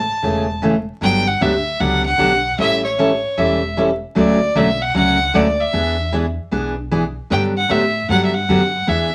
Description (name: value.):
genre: country, western swing.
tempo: 153 BPM.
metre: 4/4.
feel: swing 65% on 8ths.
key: unclear.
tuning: A4 = 440 Hz.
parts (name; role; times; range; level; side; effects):
clear fiddle; melody; 0.0-9.1 s; C#5 to A5; -21 LUFS; equal; none.
upright bass; bass; 0.0-9.1 s; E1 to A2; -26 LUFS; equal; none.
picked steel-string acoustic guitar; accompaniment; 0.2-9.1 s; C#3 to A4; -20 LUFS; equal; none.
room: wet studio reverb, RT60 0.5 s.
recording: vinyl crackle.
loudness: -17 LUFS.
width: mono.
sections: 0.0-1.0 A section; 1.0-9.1 B section.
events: none.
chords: 0.0 Amaj7; 1.0 Gmaj7; 2.6 A7; 4.2 Dmaj7; 5.7 E7; 7.3 Gmaj7.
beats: 0.23 0.63 | 1.02 1.41 1.81 2.20 | 2.59 2.99 3.38 3.77 | 4.17 4.56 4.95 5.34 | 5.74 6.13 6.52 6.91 | 7.30 7.70 8.09 8.48 | 8.87.